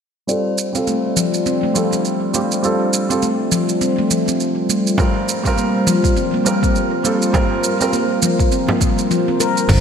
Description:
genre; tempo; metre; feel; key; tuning
organic downtempo; 102 BPM; 4/4; swing 59% on 16ths; unclear; A4 = 440 Hz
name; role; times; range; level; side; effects
felt-muted upright piano; accompaniment; 0.3-8.0 s; G3 to Bb4; -21 LUFS; right 2 dB; sidechain pumping, low-pass filter, digital delay
warm analog pad; sustained chords; 0.3-9.8 s; G3 to C5; -24 LUFS; equal; chorus, sidechain pumping
electronic shaker and crash cymbal; drums; 0.3-9.8 s; none; -24 LUFS; right 6 dB; none
bronze singing bowl; texture; 0.3-9.8 s; C5 to D5; -30 LUFS; left 6 dB; none
handpan; arpeggios; 0.8-9.6 s; F3 to Bb4; -18 LUFS; left 1 dB; low-pass filter, digital delay
electronic kick drum; drums; 5.0-9.8 s; none; -18 LUFS; equal; none
frame drum; percussion; 5.0-9.8 s; none; -26 LUFS; right 2 dB; none
fretless electric bass; bass; 9.7-9.8 s; G1; -12 LUFS; equal; none
room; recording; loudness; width
wet plate reverb, RT60 2.6 s; bright 1980s-style digital production; -15 LUFS; side -7 dB against mid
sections
0.3-9.7 A section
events
filter sweep on felt piano 0.3-9.7; filter sweep on analog synth pad 0.3-9.7; kick drops out 9.1-9.7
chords
0.3 Dm7; 5.0 Fsus4

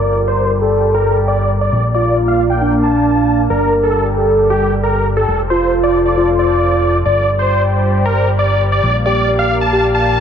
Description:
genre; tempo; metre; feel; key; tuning
trance; 135 BPM; 4/4; straight; G minor; A4 = 438 Hz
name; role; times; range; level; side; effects
big supersaw lead; melody; 0.0-10.2 s; G4 to A5; -17 LUFS; equal; low-pass filter, dub echo
warm velvety synth lead; second line; 0.0-10.2 s; D4 to D5; -16 LUFS; equal; chorus, tape echo
lush unison pad; sustained chords; 0.0-10.2 s; G3 to F5; -21 LUFS; equal; chorus, phaser
fat analog bass; bass; 0.0-10.2 s; F1 to Bb1; -18 LUFS; equal; none
room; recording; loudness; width
moderate huge ambient reverb, RT60 4.2 s; low-pass filter; -12 LUFS; side -8 dB against mid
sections
0.0-10.2 A section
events
filter sweep on supersaw synth 0.0-10.2; filter sweep 0.0-10.2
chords
0.0 Gm; 1.7 Bb; 3.5 Gm; 5.3 F; 7.1 G5; 8.8 Bb

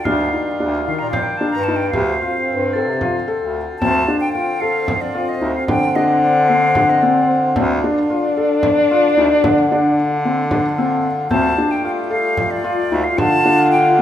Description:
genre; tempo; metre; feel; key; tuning
contemporary instrumental, chamber music in an uneven meter; 224 BPM (eighths); 7/8; straight; D phrygian; A4 = 443 Hz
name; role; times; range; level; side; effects
breathy silver concert flute; melody; 0.0-7.4, 11.3-14.0 s; D5 to Bb5; -21 LUFS; left 1 dB; none
mellow French horn; second line; 0.0-14.0 s; C4 to F4; -20 LUFS; left 1 dB; none
hand-pumped harmonium; sustained chords; 0.0-14.0 s; D3 to F4; -27 LUFS; right 2 dB; none
felt-muted upright piano; arpeggios; 0.1-14.0 s; Eb3 to A4; -21 LUFS; left 2 dB; none
bright bass clarinet; bass; 0.1-14.0 s; D2 to D3; -18 LUFS; left 1 dB; none
frame drum; percussion; 0.1-13.9 s; none; -27 LUFS; right 2 dB; none
crotales; texture; 0.1-3.5, 11.3-12.0 s; F6 to A6; -29 LUFS; left 2 dB; none
room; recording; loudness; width
wet recital hall reverb, RT60 1.4 s; minimal, uncompressed stereo recording; -14 LUFS; side -10 dB against mid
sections
0.0-3.8 A section; 3.8-14.0 B section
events
none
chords
0.1 Ebadd9/D; 1.9 Dm7; 11.3 Fadd9/D

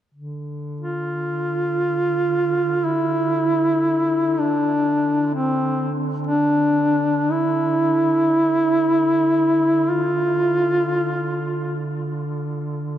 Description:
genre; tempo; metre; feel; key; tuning
caucasian folk, Caucasian lament; free time; none; none; D minor; A4 = 440 Hz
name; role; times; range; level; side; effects
mellow duduk; drone; 0.1-13.0 s; D3; -28 LUFS; right 1 dB; none
warm duduk; melody; 0.8-11.9 s; C4 to F4; -18 LUFS; equal; tape echo
room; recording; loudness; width
wet cathedral reverb, RT60 5.4 s; dark, warm production; -18 LUFS; side -11 dB against mid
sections
0.2-13.0 A section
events
none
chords
none

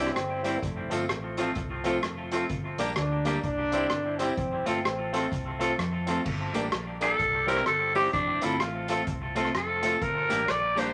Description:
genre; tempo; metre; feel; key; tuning
ska; 128 BPM; 4/4; swing 61% on 8ths; F major; A4 = 440 Hz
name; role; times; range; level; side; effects
clear trombone; melody; 0.0-5.8 s; A3 to D4; -34 LUFS; equal; none
twangy electric guitar; accompaniment; 0.0-10.9 s; F3 to A4; -34 LUFS; equal; tape echo
warm upright piano; stabs; 0.0-10.9 s; Bb3 to C5; -36 LUFS; equal; none
hollow-body short-scale fingered electric bass; bass; 0.0-10.9 s; F1 to F2; -38 LUFS; equal; none
vintage drum kit; drums; 0.1-10.9 s; crash cymbal, hi-hat, kick drum, rim click; -37 LUFS; equal; tape echo
tambourine; percussion; 0.5-10.9 s; none; -50 LUFS; equal; none
raspy alto saxophone; melody; 7.0-10.9 s; D4 to D5; -28 LUFS; equal; none
room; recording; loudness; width
wet studio reverb, RT60 0.5 s; none; -28 LUFS; mono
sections
0.0-6.3 A section; 6.3-10.9 B section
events
alto saxophone solo 6.3-10.9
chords
0.0 C; 0.6 F; 2.5 Gm; 3.4 C; 4.4 F; 6.3 Gm; 7.2 C; 8.1 F; 10.0 Gm

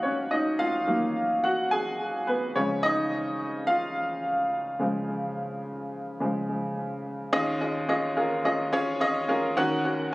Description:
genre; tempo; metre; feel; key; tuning
pop; 107 BPM; 4/4; swing 56% on 16ths; unclear; A4 = 440 Hz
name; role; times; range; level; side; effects
clear upright piano; solo; 0.0-10.1 s; Eb2 to Ab5; -25 LUFS; equal; tape echo
room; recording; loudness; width
moderate recital hall reverb, RT60 1.7 s; recorded on a phone in the room, club ambience; -25 LUFS; side -20 dB against mid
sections
0.0-7.3 A section; 7.3-10.1 B section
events
upright piano solo 0.0-7.3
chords
0.0 Ebm; 2.6 Db; 7.3 Dbadd9/Eb; 9.6 Gb/Eb

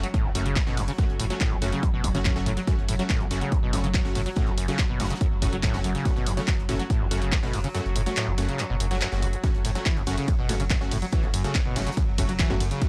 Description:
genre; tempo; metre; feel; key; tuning
driving peak-time techno; 142 BPM; 4/4; straight; F# minor; A4 = 440 Hz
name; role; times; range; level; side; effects
overdriven acid bass; riff; 0.0-12.9 s; F#1 to F#3; -32 LUFS; equal; lush chorus, sidechain pumping, tape echo
supersaw stab; stabs; 0.0-12.9 s; A3 to F#4; -36 LUFS; equal; sidechain pumping, tape echo
saturated sub bass; bass; 0.0-12.7 s; F#1; -32 LUFS; equal; tube saturation, sidechain pumping, low-pass filter
overtone-sweeping drone; drone; 0.0-12.9 s; F#3; -38 LUFS; equal; chorus, built-in reverb, sidechain pumping
open jazz drum kit; drums; 0.0-12.9 s; hi-hat, snare drum; -47 LUFS; equal; none
punchy analog drum machine; drums; 0.0-12.9 s; handclaps, hi-hat, ride cymbal; -34 LUFS; equal; none
electronic kick drum; drums; 0.1-12.9 s; none; -28 LUFS; equal; none
swell; sound effects; 8.8-9.4 s; none; -44 LUFS; equal; none
room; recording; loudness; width
digital ambience; dry, gritty hardware recording, transformer saturation, cassette tape; -25 LUFS; mono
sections
0.0-12.9 A section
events
kick drops out 7.7-9.4; swell 8.8-9.4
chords
0.0 F#m

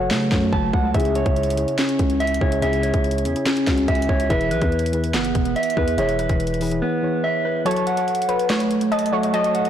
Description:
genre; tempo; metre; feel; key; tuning
hip hop, trap; 143 BPM; 4/4; half-time; F# minor; A4 = 435 Hz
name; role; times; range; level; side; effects
muted felt-like synth keys; accompaniment; 0.0-9.7 s; C#3 to G#5; -25 LUFS; left 4 dB; chorus
mellow electric guitar; arpeggios; 0.0-9.7 s; A3 to A5; -22 LUFS; right 2 dB; tape echo
growling 808-style bass; bass; 0.0-6.8 s; E1 to C#3; -25 LUFS; equal; none
trap drum kit; drums; 0.1-9.7 s; handclaps, hi-hat, kick drum, snare drum; -25 LUFS; equal; none
warbly dusty pluck; second line; 7.7-9.7 s; B4 to D#5; -22 LUFS; left 2 dB; chorus, tape echo
room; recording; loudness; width
moderate lush hall reverb, RT60 1.9 s, digital ambience; blown-out, overdriven recording, overdrive; -18 LUFS; side -10 dB against mid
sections
0.0-9.7 A section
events
break 0.0-0.9; drums muted 6.8-7.7; kick muted 7.7-9.7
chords
0.0 F#m; 0.9 C#m; 4.3 E; 7.7 F#m

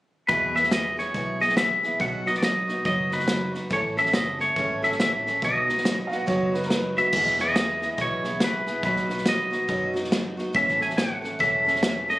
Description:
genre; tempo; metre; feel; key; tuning
honky-tonk and classic country; 140 BPM; 4/4; swing 61% on 8ths; E major; A4 = 440 Hz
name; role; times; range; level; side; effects
twangy electric guitar; melody; 0.3-12.2 s; B4 to G#5; -23 LUFS; equal; none
picked steel-string acoustic guitar; accompaniment; 0.3-12.2 s; E2 to A4; -29 LUFS; equal; none
vintage muted fingered electric bass; bass; 0.3-12.1 s; E1 to F#2; -37 LUFS; equal; none
natural country drum kit; drums; 0.3-12.1 s; crash cymbal, hi-hat, kick drum, snare drum; -28 LUFS; equal; none
bright upright piano; second line; 6.1-7.0 s; A#4 to F#5; -28 LUFS; right 2 dB; none
room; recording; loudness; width
light reverb; recorded on a phone in the room, club reverb; -21 LUFS; side -18 dB against mid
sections
0.3-7.1 A section; 7.1-12.2 B section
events
none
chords
0.3 E; 2.0 B; 3.7 A; 5.4 B; 7.1 E; 8.8 B; 10.5 A

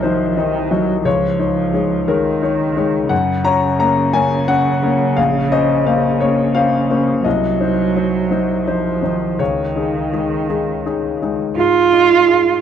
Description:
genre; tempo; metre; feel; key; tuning
neoclassical piano and strings; 58 BPM (dotted quarters); 6/8; rubato; unclear; A4 = 440 Hz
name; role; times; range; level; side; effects
muted cello; second line; 0.0-12.6 s; Db3 to F4; -18 LUFS; right 6 dB; none
warm grand piano; accompaniment; 0.0-12.6 s; Bb1 to Bb5; -16 LUFS; left 5 dB; none
room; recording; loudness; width
little or no reverb; dry, close 1970s-style studio recording; -14 LUFS; side -8 dB against mid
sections
0.0-11.6 A section; 11.6-12.6 B section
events
none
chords
0.0 Cdim; 1.1 Dbsus2; 3.1 Gb; 5.2 Bbmadd9; 7.2 Cdim; 9.4 Dbsus2; 11.6 Ab5

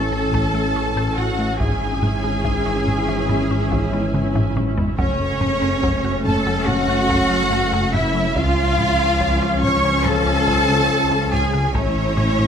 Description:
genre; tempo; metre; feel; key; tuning
cinematic, hybrid orchestral and electronic film score; 71 BPM; 4/4; straight; F# minor; A4 = 435 Hz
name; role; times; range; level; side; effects
rich symphonic violin section; melody; 0.0-12.5 s; C#5 to C#6; -28 LUFS; left 2 dB; none
warm symphonic violin section; second line; 0.0-12.5 s; C#5 to C#6; -25 LUFS; equal; none
rich symphonic viola section; accompaniment; 0.0-12.5 s; E#3 to A4; -26 LUFS; equal; none
mellow French horn section; sustained chords; 0.0-12.5 s; E3 to E4; -26 LUFS; left 4 dB; none
mallet-like synth pluck; arpeggios; 0.0-12.5 s; C#3 to A4; -32 LUFS; left 1 dB; none
round analog bass; riff; 0.0-12.5 s; C#2 to A3; -27 LUFS; left 2 dB; none
clear symphonic double bass section; bass; 0.0-12.5 s; F#1 to C#2; -25 LUFS; right 3 dB; none
punchy sub bass; bass; 0.0-12.5 s; F#1 to C#2; -29 LUFS; equal; none
rich symphonic cello section; bass; 0.0-12.5 s; C#4 to C#5; -24 LUFS; equal; none
solo taiko drums; drums; 0.3-12.5 s; none; -26 LUFS; right 1 dB; none
room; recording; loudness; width
light reverb; none; -16 LUFS; side -8 dB against mid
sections
0.0-12.5 A section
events
drum fill 4.1-5.0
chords
0.0 A; 1.6 E6/G#; 5.0 F#m; 8.4 C#; 11.7 A

